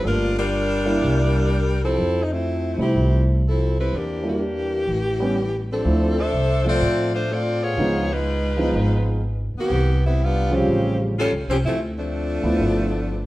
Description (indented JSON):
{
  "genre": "jazz, big band swing",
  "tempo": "124 BPM",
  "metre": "4/4",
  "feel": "swing 66% on 8ths",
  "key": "C major",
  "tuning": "A4 = 440 Hz",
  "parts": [
    { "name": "clear saxophone section", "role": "melody", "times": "0.0-13.3 s", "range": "E3 to E5", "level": "-23 LUFS", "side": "left 1 dB", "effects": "none" },
    { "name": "warm grand piano", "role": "accompaniment", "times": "0.0-13.1 s", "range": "Db3 to E5", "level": "-25 LUFS", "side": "right 1 dB", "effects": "none" },
    { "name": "upright bass", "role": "bass", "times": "0.0-13.3 s", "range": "G1 to C3", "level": "-22 LUFS", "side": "equal", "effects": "none" }
  ],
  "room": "wet large studio reverb, RT60 1.3 s",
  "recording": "worn, warbling old tape, cassette tape, warbly pitch drift",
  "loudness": "-19 LUFS",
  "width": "side -17 dB against mid",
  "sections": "0.0-13.3 A section",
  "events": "none",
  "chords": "0.0 Gm7; 1.0 C7; 2.0 Fmaj7; 3.9 Em7b5; 4.9 A7; 5.8 Dm7; 7.8 Db9; 9.7 Cmaj7; 10.7 A7alt; 11.6 Dm7; 12.6 G13",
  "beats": "| 0.04 0.53 1.01 1.50 | 1.98 2.46 2.95 3.43 | 3.91 4.40 4.88 5.36 | 5.84 6.33 6.81 7.29 | 7.78 8.26 8.74 9.22 | 9.71 10.19 10.67 11.15 | 11.64 12.12 12.60 13.09"
}